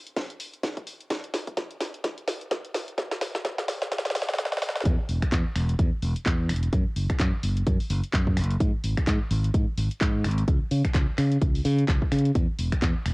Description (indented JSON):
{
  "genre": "piano house",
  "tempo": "128 BPM",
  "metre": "4/4",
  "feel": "swing 58% on 16ths",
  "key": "C# minor",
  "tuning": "A4 = 443 Hz",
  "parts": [
    { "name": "house drum kit", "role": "drums", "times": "0.1-13.1 s", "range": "finger snaps, handclaps, hi-hat, snare drum", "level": "-31 LUFS", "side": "equal", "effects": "high-pass filter on hats, cassette tape, high-pass filter on snare, high-pass filter on room" },
    { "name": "electronic kick drum", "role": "drums", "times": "0.2-12.9 s", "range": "none", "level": "-25 LUFS", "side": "equal", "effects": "high-pass filter on kick, cassette tape, high-pass filter on room" },
    { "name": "modern bright fingered electric bass", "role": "bass", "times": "4.9-13.1 s", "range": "E1 to C#3", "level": "-24 LUFS", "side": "equal", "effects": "tube saturation, sidechain pumping, low-pass filter" }
  ],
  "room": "little or no reverb",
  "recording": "home recording on cassette, high-pass filter",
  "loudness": "-23 LUFS",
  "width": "side -27 dB against mid",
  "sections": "0.0-4.9 A section; 4.9-13.1 B section",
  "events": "build-up 0.0-4.9; drum fill 0.0-4.9; drop 4.9-13.1",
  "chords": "none",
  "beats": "0.17 0.63 | 1.10 1.57 2.04 2.51 | 2.98 3.45 3.92 4.38 | 4.85 5.32 5.79 6.26 | 6.73 7.20 7.67 8.13 | 8.60 9.07 9.54 10.01 | 10.48 10.95 11.42 11.88 | 12.35 12.82"
}